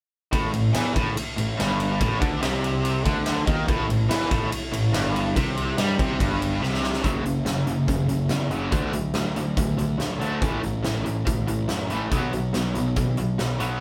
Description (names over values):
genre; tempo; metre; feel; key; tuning
classic rock; 142 BPM; 4/4; straight; A major; A4 = 440 Hz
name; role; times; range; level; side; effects
distorted electric guitar; riff; 0.3-13.8 s; F#2 to D4; -33 LUFS; equal; none
overdriven electric guitar; riff; 0.3-13.8 s; F#2 to B3; -29 LUFS; equal; harmonic tremolo
fuzz picked electric bass; bass; 0.3-13.8 s; F#1 to G2; -30 LUFS; equal; overdrive
huge arena drum kit; drums; 0.3-13.7 s; hi-hat, kick drum, ride cymbal, snare drum; -29 LUFS; equal; none
string machine, violas; sustained chords; 3.7-7.0 s; E4 to A5; -41 LUFS; equal; none
room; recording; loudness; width
moderate small room ambience, RT60 0.5 s; band playing live in one room; -24 LUFS; mono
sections
0.3-7.0 A section; 7.0-13.8 B section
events
drum fill 6.6-7.0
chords
0.3 A; 7.0 F#5; 8.7 D; 10.4 A5; 12.1 B5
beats
| 0.33 0.75 1.17 1.58 | 2.00 2.42 2.84 3.26 | 3.68 4.09 4.51 4.93 | 5.35 5.77 6.19 6.61 | 7.03 7.46 7.88 8.30 | 8.72 9.15 9.57 10.00 | 10.42 10.85 11.27 11.69 | 12.12 12.54 12.97 13.39